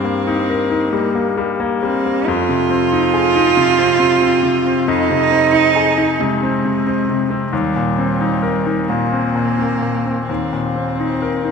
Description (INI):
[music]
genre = neoclassical piano and strings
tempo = 42-47 BPM (dotted quarters)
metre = 6/8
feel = rubato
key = unclear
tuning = A4 = 444 Hz
[part]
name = warm cello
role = second line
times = 0.0-11.5 s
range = G3 to F4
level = -17 LUFS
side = right 6 dB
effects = none
[part]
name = bright concert grand piano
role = accompaniment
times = 0.0-11.5 s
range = Eb2 to Bb4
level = -17 LUFS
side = left 4 dB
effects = none
[sound]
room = wet concert hall reverb, RT60 1.8 s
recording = none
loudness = -14 LUFS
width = side -5 dB against mid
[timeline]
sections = 0.0-11.5 A section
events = none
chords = 0.0 Eb/G; 2.3 Fm7; 7.5 Eb6